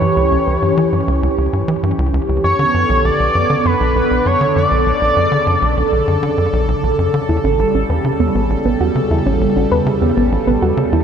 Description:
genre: ambient, sequencer-driven space music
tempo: 99 BPM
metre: 4/4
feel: straight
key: B minor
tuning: A4 = 441 Hz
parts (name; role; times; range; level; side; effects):
- pulse-width lead; melody; 0.0-6.3 s; B4 to D5; -18 LUFS; equal; chorus, analog delay
- phased analog pad; sustained chords; 0.0-11.0 s; C#3 to A4; -17 LUFS; right 1 dB; phaser, chorus
- tight sequencer bass; riff; 0.0-11.0 s; A1 to E3; -18 LUFS; equal; analog delay
- soft round pluck; arpeggios; 7.3-11.0 s; B3 to B4; -18 LUFS; moving between left 1 dB and right 5 dB; chorus, auto-pan, analog delay
room: wet huge ambient reverb, RT60 7.4 s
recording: none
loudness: -13 LUFS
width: side -7 dB against mid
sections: 0.0-11.0 A section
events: none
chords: 0.0 C#dim; 2.4 Bm7; 7.3 A7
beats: | 0.02 0.62 1.23 1.83 | 2.44 3.05 3.65 4.26 | 4.86 5.47 6.08 6.68 | 7.29 7.89 8.50 9.11 | 9.71 10.32 10.93

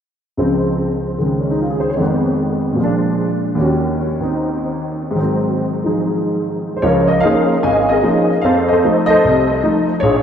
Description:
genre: solo jazz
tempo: 150 BPM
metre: 4/4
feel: swing 65% on 8ths, rubato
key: Db major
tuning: A4 = 440 Hz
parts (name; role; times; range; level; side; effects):
- warm grand piano; solo; 0.4-10.2 s; Ab1 to Ab5; -14 LUFS; equal; ensemble chorus, tape echo
room: wet lush hall reverb, RT60 2.9 s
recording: dreamy mix soaked in reverb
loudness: -14 LUFS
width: side -8 dB against mid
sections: 0.4-6.8 A section; 6.8-10.2 B section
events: none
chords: 0.4 Dbmaj7; 2.0 Fm7b5; 2.8 Bb7; 3.6 Ebm7; 5.2 Ab7; 6.8 Db69; 8.5 F7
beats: | 0.39 0.80 1.21 1.61 | 2.00 2.40 2.79 3.19 | 3.59 3.98 4.38 4.78 | 5.18 5.59 6.00 6.42 | 6.84 7.25 7.65 8.05 | 8.45 8.85 9.25 9.64 | 10.04

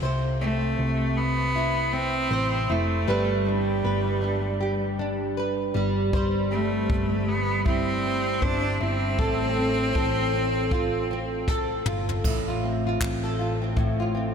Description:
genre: acoustic pop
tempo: 79 BPM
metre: 4/4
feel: swing 60% on 16ths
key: C major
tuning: A4 = 441 Hz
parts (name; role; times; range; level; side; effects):
- flamenco guitar; accompaniment; 0.0-14.3 s; A2 to C5; -27 LUFS; equal; double-tracked left and right
- hollow-body short-scale picked electric bass; bass; 0.0-14.3 s; F1 to C2; -28 LUFS; equal; none
- bright cello; melody; 0.4-11.9 s; G3 to D4; -28 LUFS; equal; diffuse ambient delay
- jazz brush drum kit; drums; 6.1-14.0 s; crash cymbal, handclaps, kick drum, snare drum, toms; -30 LUFS; equal; none
room: wet cathedral reverb, RT60 6.3 s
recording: dreamy mix soaked in reverb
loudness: -22 LUFS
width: side -7 dB against mid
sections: 0.0-12.2 A section; 12.2-14.3 B section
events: drum fill 11.5-12.2, 13.8-14.3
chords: 0.0 C; 3.1 G; 9.2 F/A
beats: | 0.02 0.79 1.55 2.32 | 3.08 3.85 4.61 5.37 | 6.14 6.90 7.67 8.43 | 9.19 9.95 10.72 11.48 | 12.24 13.00 13.77

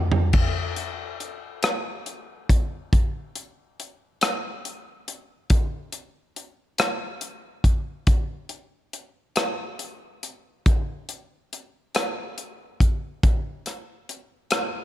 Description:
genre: pop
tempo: 46 BPM (dotted quarters)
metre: 6/8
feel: straight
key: none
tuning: none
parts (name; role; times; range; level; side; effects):
- modern studio drum kit; drums; 0.1-14.7 s; crash cymbal, hi-hat, kick drum, rim click, toms; -22 LUFS; equal; none
room: little or no reverb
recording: none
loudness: -22 LUFS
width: side -14 dB against mid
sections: 0.3-14.8 A section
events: drum fill 0.0-0.3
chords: none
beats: | 0.34 1.64 | 2.93 4.22 | 5.51 6.79 | 8.08 9.37 | 10.67 11.96 | 13.23 14.51

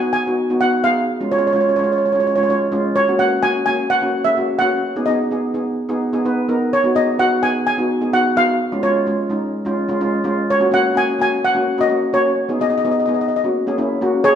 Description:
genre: calypso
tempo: 128 BPM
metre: 4/4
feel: straight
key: unclear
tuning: A4 = 440 Hz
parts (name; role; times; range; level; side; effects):
- steel pan; melody; 0.0-14.4 s; G#4 to G#5; -17 LUFS; right 1 dB; none
- steel pan; accompaniment; 0.0-14.2 s; G#3 to B4; -18 LUFS; equal; none
room: wet large studio reverb, RT60 1.3 s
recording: band playing live in one room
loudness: -15 LUFS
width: side -8 dB against mid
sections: 0.0-14.2 A section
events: none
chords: 0.0 B; 1.1 C#; 3.0 F#add9; 4.8 G#m; 6.7 B; 8.6 C#; 10.5 F#; 12.4 G#m; 13.3 F#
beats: 0.14 0.61 | 1.08 1.55 2.02 2.49 | 2.96 3.43 3.90 4.37 | 4.84 5.31 5.78 6.25 | 6.72 7.19 7.66 8.13 | 8.60 9.07 9.54 10.01 | 10.48 10.96 11.43 11.90 | 12.37 12.84 13.31 13.78 | 14.25

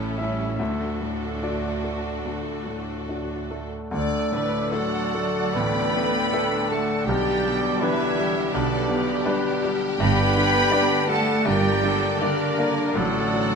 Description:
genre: classical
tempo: 70-83 BPM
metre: 4/4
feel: rubato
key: D major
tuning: A4 = 440 Hz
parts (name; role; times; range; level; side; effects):
- clear baby grand piano; melody; 0.0-13.6 s; B1 to G5; -27 LUFS; left 2 dB; none
- warm symphonic violin section; second line; 0.0-13.6 s; E4 to D5; -32 LUFS; left 4 dB; none
- rich symphonic viola section; accompaniment; 0.0-12.8 s; G3 to D4; -34 LUFS; right 1 dB; none
- clear symphonic double bass section; bass; 0.0-13.6 s; G1 to D2; -30 LUFS; right 5 dB; none
- warm symphonic cello section; bass; 0.0-13.6 s; D3 to F#4; -32 LUFS; right 2 dB; none
- bright clarinet; second line; 3.9-13.6 s; G4 to Bb4; -32 LUFS; left 3 dB; none
- mellow cor anglais; second line; 3.9-13.6 s; D5; -33 LUFS; right 5 dB; none
- warm French horn section; sustained chords; 3.9-13.6 s; D4 to A4; -32 LUFS; left 6 dB; none
- warm trombone section; sustained chords; 3.9-13.6 s; D3 to B3; -33 LUFS; right 5 dB; none
- dark tuba; bass; 3.9-13.6 s; G1 to D2; -33 LUFS; right 6 dB; none
- rich symphonic violin section; melody; 4.3-13.6 s; D5 to B5; -29 LUFS; left 2 dB; none
- mellow trumpet; stabs; 4.3-13.6 s; D4 to B4; -29 LUFS; right 1 dB; none
- bright small flute group; second line; 4.4-13.6 s; Bb4 to G5; -29 LUFS; right 1 dB; none
room: moderate scoring stage reverb, RT60 1.5 s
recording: none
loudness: -21 LUFS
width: side -5 dB against mid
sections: 0.0-3.9 A section; 3.9-13.6 A section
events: none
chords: 0.0 A7; 0.6 D; 7.1 G/B; 10.0 G; 11.5 Gm; 13.0 D/A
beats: | 0.59 1.43 2.27 3.11 | 3.95 4.74 5.56 6.33 | 7.07 7.81 8.54 9.27 | 10.00 10.73 11.47 12.22 | 12.97

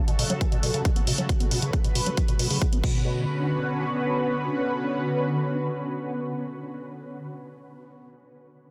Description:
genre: uplifting trance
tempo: 136 BPM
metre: 4/4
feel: straight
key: B minor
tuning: A4 = 440 Hz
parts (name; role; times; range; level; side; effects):
- analog string pad; sustained chords; 0.0-7.3 s; C#3 to B4; -30 LUFS; equal; ensemble chorus, phaser, sidechain pumping
- liquid acid bass; arpeggios; 0.1-3.2 s; B2 to B3; -33 LUFS; equal; subtle chorus, sidechain pumping, dub echo
- punchy analog drum machine; drums; 0.1-2.9 s; crash cymbal, hi-hat; -33 LUFS; equal; none
- electronic kick drum; drums; 0.4-2.9 s; none; -26 LUFS; equal; overdrive
room: moderate huge ambient reverb, RT60 8.4 s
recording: dense, heavily limited modern master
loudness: -26 LUFS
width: mono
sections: 0.0-3.1 A section; 3.1-6.6 B section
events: filter sweep on acid bass 0.0-3.1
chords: 0.0 F#m; 2.8 Bmadd9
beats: 0.41 0.85 | 1.29 1.73 2.17 2.62 | 3.06 3.50 3.94 4.38 | 4.82 5.26 5.70 6.14

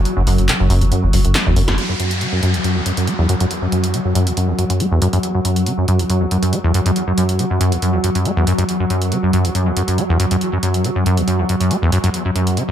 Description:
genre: driving peak-time techno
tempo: 139 BPM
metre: 4/4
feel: straight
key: unclear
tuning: A4 = 440 Hz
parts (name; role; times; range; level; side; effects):
- saturated sub bass; bass; 0.0-1.8 s; F#1; -16 LUFS; equal; overdrive, low-pass filter
- swarming drone; drone; 0.0-12.7 s; F#3; -21 LUFS; equal; built-in reverb
- punchy analog drum machine; drums; 0.1-12.7 s; handclaps, hi-hat, snare drum; -24 LUFS; right 1 dB; none
- acid bass, saw; riff; 0.2-12.7 s; E2 to A3; -17 LUFS; equal; analog chorus, analog delay
- downlifter and riser; sound effects; 1.8-5.2, 12.1-12.7 s; none; -27 LUFS; equal; none
room: light reverb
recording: echo-heavy mix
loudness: -14 LUFS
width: side -10 dB against mid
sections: 0.0-1.8 A section; 1.8-12.7 B section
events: drum fill 1.3-1.8; band accent 1.7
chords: 0.0 F#5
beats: | 0.05 0.48 0.92 1.35 | 1.78 2.21 2.64 3.08 | 3.51 3.94 4.37 4.80 | 5.23 5.67 6.10 6.53 | 6.96 7.39 7.82 8.26 | 8.69 9.12 9.55 9.98 | 10.41 10.85 11.28 11.71 | 12.14 12.57

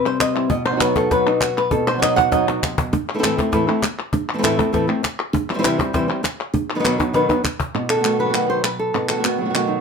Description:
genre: flamenco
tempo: 199 BPM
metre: 4/4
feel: straight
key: B phrygian dominant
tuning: A4 = 439 Hz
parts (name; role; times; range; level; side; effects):
- flamenco guitar; melody; 0.0-9.8 s; A2 to F#5; -19 LUFS; equal; none
- palmas hand claps; percussion; 0.1-9.7 s; none; -24 LUFS; left 2 dB; none
- cajon; percussion; 0.2-7.7 s; none; -26 LUFS; left 1 dB; none
- flamenco guitar; stabs; 0.3-2.7, 7.7-9.8 s; B2 to F#4; -22 LUFS; right 4 dB; none
room: moderate studio reverb, RT60 0.6 s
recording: minimal, uncompressed stereo recording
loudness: -17 LUFS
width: side -5 dB against mid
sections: 0.0-2.9 A section; 2.9-7.7 B section; 7.7-9.8 C section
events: nylon-string guitar solo 0.0-2.9; drum fill 2.5-2.9, 7.1-7.7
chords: 0.0 C; 0.5 B; 2.9 Am; 5.3 C; 6.5 B; 7.7 B7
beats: 0.21 | 0.51 0.81 1.12 1.42 | 1.72 2.02 2.33 2.63 | 2.93 3.23 3.54 3.84 | 4.14 4.44 4.74 5.04 | 5.34 5.64 5.95 6.25 | 6.55 6.85 7.14 7.45 | 7.75 8.04 8.34 8.64 | 8.94 9.24 9.54

